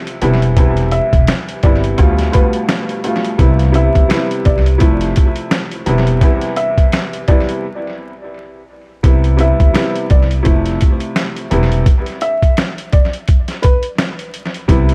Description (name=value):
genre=hip hop, boom-bap hip-hop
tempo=85 BPM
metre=4/4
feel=swing 59% on 16ths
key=C major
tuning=A4 = 440 Hz
part: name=clear upright piano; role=accompaniment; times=0.0-14.9 s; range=D2 to F4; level=-20 LUFS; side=equal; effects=cassette tape, high-pass filter, low-pass filter, tape echo
part: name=boom bap sampler-style drum kit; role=drums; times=0.1-14.9 s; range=hi-hat, kick drum, snare drum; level=-16 LUFS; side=equal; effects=tape echo
part: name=upright bass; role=bass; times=0.2-14.9 s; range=E1 to D2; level=-17 LUFS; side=equal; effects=none
part: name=dark upright piano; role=melody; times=0.9-13.8 s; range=B4 to E5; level=-23 LUFS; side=equal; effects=high-pass filter, low-pass filter, tape echo
room=small room ambience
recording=echo-heavy mix, vinyl crackle, faint mains hum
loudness=-14 LUFS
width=mono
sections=0.0-14.9 A section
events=break 6.2-9.0, 11.9-14.7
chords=0.2 Cmaj7/E; 2.0 G9/D; 3.4 Cmaj7; 4.8 Fmaj7; 5.9 Cmaj7/E; 7.6 N.C.; 9.0 Cmaj7; 10.5 Fmaj7; 11.5 Cmaj7/E; 13.3 N.C.